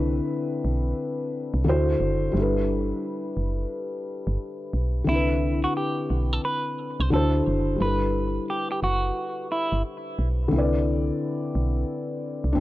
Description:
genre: lo-fi hip hop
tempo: 88 BPM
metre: 4/4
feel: swing 62% on 16ths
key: G major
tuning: A4 = 440 Hz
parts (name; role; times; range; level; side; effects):
- felt-muted upright piano; accompaniment; 0.0-12.6 s; D3 to D5; -26 LUFS; left 2 dB; cassette tape
- woody FM bass; bass; 0.0-12.6 s; F#1 to D2; -25 LUFS; right 1 dB; none
- semi-hollow electric guitar; melody; 5.1-9.8 s; E4 to C5; -28 LUFS; right 1 dB; harmonic tremolo, analog delay
room: light reverb, studio reverb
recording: none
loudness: -23 LUFS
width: side -16 dB against mid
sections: 0.0-12.6 A section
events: none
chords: 0.0 Cmaj9; 1.7 D9; 2.3 G69; 5.1 Cmaj9; 7.1 D9; 7.8 G69; 10.5 Cmaj9

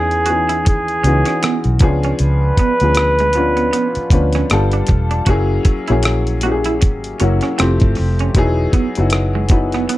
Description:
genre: R&B, neo-soul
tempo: 78 BPM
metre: 4/4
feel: swing 59% on 16ths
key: unclear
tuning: A4 = 439 Hz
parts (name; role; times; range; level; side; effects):
- clear flugelhorn; melody; 0.0-4.9 s; G#4 to B4; -18 LUFS; right 1 dB; slapback echo
- warm upright piano; accompaniment; 0.0-10.0 s; E3 to B4; -19 LUFS; left 2 dB; none
- vintage muted fingered electric bass; bass; 0.0-9.9 s; E1 to E2; -17 LUFS; equal; none
- dusty soul sampler-style drum kit; drums; 0.1-10.0 s; hi-hat, kick drum, rim click; -16 LUFS; equal; none
- electric guitar at the edge of break-up; second line; 0.3-10.0 s; G#3 to F#4; -23 LUFS; right 7 dB; wide subtle chorus
room: light reverb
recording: dark, warm production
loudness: -13 LUFS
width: side -16 dB against mid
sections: 0.0-10.0 A section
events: none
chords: 0.0 C#m9; 1.8 C#7b9; 4.5 G9; 5.3 F#9; 7.6 Fmaj9; 8.3 Emaj9

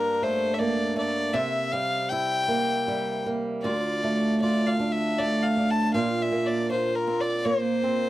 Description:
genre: celtic folk, Celtic slow air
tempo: 79 BPM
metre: 3/4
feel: rubato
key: D minor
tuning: A4 = 440 Hz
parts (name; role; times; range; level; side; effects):
- clear fiddle; melody; 0.0-8.1 s; Bb4 to A5; -26 LUFS; left 2 dB; none
- picked swing-style acoustic guitar; accompaniment; 0.0-8.1 s; D2 to F4; -25 LUFS; right 2 dB; none
room: light reverb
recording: dry, close 1970s-style studio recording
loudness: -23 LUFS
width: side -15 dB against mid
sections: 0.0-8.1 A section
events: none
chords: 0.0 Gmadd9; 1.3 C7; 3.6 Dm; 6.0 Bbsus2

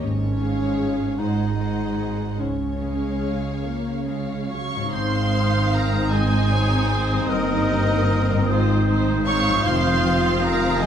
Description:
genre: classical, slow romantic movement for symphony orchestra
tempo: 45-54 BPM (dotted quarters)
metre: 6/8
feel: rubato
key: Db major, Ab major from 4.9 s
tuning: A4 = 440 Hz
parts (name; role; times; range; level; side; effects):
- warm symphonic violin section; melody; 0.0-10.9 s; Db5 to Db6; -29 LUFS; left 1 dB; none
- mellow clarinet; second line; 0.0-10.9 s; Db4 to F4; -29 LUFS; left 1 dB; none
- warm symphonic violin section; second line; 0.0-10.9 s; Bb4 to Gb5; -31 LUFS; left 1 dB; none
- warm studio viola section; accompaniment; 0.0-10.9 s; Gb3 to Ab4; -29 LUFS; right 1 dB; none
- concert harp; arpeggios; 0.0-10.9 s; F2 to C5; -30 LUFS; left 9 dB; none
- rich symphonic double bass section; bass; 0.0-10.9 s; F1 to Db2; -26 LUFS; right 2 dB; none
- warm symphonic cello section; bass; 0.0-10.9 s; F2 to Db3; -26 LUFS; right 2 dB; none
- clear trumpet; stabs; 4.5-10.9 s; Eb4 to Db5; -30 LUFS; right 4 dB; none
- clear oboe; second line; 4.9-10.9 s; Bb4 to C5; -31 LUFS; right 2 dB; none
- large flute ensemble; second line; 4.9-10.9 s; Eb6; -32 LUFS; left 2 dB; none
- mellow French horn section; sustained chords; 4.9-10.9 s; Eb3 to C4; -30 LUFS; left 6 dB; none
room: moderate scoring stage reverb, RT60 1.6 s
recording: close, detailed microphones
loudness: -19 LUFS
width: side -8 dB against mid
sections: 0.0-4.9 A section; 4.9-10.9 B section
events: none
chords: 0.0 Db/Ab; 1.2 Ab7; 2.4 Db; 4.9 Ab; 7.3 Eb/G; 8.5 Ab; 9.7 Fm7

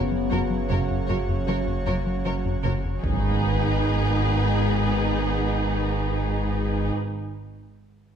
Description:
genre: cinematic, hybrid orchestral and electronic film score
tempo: 77 BPM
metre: 4/4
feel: straight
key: G# minor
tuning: A4 = 435 Hz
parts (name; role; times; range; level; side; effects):
- airy breathy pad; sustained chords; 0.0-6.9 s; D#3 to C#5; -33 LUFS; right 1 dB; chorus
- warm French horn section; sustained chords; 0.0-6.9 s; G#3 to B3; -33 LUFS; left 6 dB; none
- warm trombone section; sustained chords; 0.0-6.9 s; C#3 to B3; -34 LUFS; right 5 dB; none
- rubbery square bass; riff; 0.0-3.0 s; F#2 to F#3; -29 LUFS; left 3 dB; none
- punchy sub bass; bass; 0.0-6.9 s; F#1 to G#1; -30 LUFS; equal; none
- warm symphonic violin section; melody; 0.3-6.9 s; B4 to C#5; -35 LUFS; left 5 dB; none
- rich symphonic violin section; second line; 0.3-6.9 s; G#4 to A#4; -33 LUFS; left 1 dB; none
- warm symphonic viola section; accompaniment; 0.3-6.9 s; D#4 to F#4; -32 LUFS; right 2 dB; none
- rich symphonic cello section; bass; 0.3-6.9 s; F#2 to G#2; -29 LUFS; right 1 dB; none
- warm symphonic double bass section; bass; 0.3-6.9 s; F#1 to G#1; -30 LUFS; right 4 dB; none
- impact; sound effects; 3.0-7.7 s; none; -32 LUFS; equal; none
room: moderate scoring stage reverb, RT60 1.5 s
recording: none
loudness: -22 LUFS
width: side -8 dB against mid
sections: 0.0-3.0 A section; 3.0-6.1 B section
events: impact 3.0-6.1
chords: 0.0 F#; 3.0 G#m

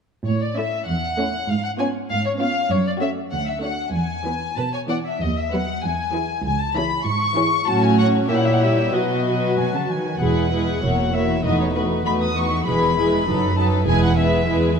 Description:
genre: quick classical-period movement for symphony orchestra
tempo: 98 BPM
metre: 2/4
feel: rubato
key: A major, E major from 5.2 s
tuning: A4 = 441 Hz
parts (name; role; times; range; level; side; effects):
- warm studio violin section; melody; 0.3-14.5 s; B4 to D#6; -24 LUFS; left 4 dB; none
- dark chamber cello section; bass; 0.3-14.8 s; C#2 to D#3; -23 LUFS; right 2 dB; none
- warm chamber violin section; second line; 0.6-14.8 s; E4 to D5; -26 LUFS; left 4 dB; none
- dark chamber viola section; accompaniment; 0.6-14.8 s; E3 to F#4; -24 LUFS; right 2 dB; none
- warm chamber double bass section; bass; 10.2-14.4 s; E1 to F#1; -25 LUFS; right 3 dB; none
room: moderate scoring stage reverb, RT60 1.9 s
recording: dark, warm production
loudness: -18 LUFS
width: side -6 dB against mid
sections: 0.3-10.2 A section; 10.2-14.8 B section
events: none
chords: 0.3 A; 1.5 C#7/G#; 2.7 F#m; 3.3 Dmaj7; 3.9 E; 5.2 B/D#; 5.8 E; 6.4 C#m; 7.7 F#m/A; 8.3 A#dim7; 8.9 B; 10.2 E; 10.8 F#7/E; 11.5 B7/E; 12.7 E; 13.3 B7/F#; 13.9 E

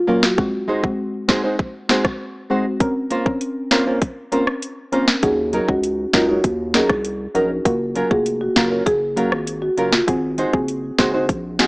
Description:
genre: dancehall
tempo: 99 BPM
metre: 4/4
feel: straight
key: unclear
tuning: A4 = 442 Hz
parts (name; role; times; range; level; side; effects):
- marimba with medium mallets; melody; 0.0-0.3, 5.2-10.0 s; F4 to Bb4; -22 LUFS; equal; none
- soft round pluck; accompaniment; 0.1-11.7 s; Gb3 to Bb4; -23 LUFS; left 1 dB; chorus
- nylon-string guitar; arpeggios; 0.1-11.7 s; Gb3 to C5; -22 LUFS; right 1 dB; none
- island pop drum kit; drums; 0.2-11.7 s; hi-hat, kick drum, rim click, snare drum; -18 LUFS; equal; none
- saturated sub bass; bass; 5.2-11.7 s; F1 to Eb2; -29 LUFS; equal; none
room: light reverb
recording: small speaker sound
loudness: -17 LUFS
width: side -26 dB against mid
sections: 0.0-11.7 A section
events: none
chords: 0.4 Ab7; 2.8 Bbmadd9; 5.2 Ebm7; 7.7 Gbmaj7; 10.1 Ab7

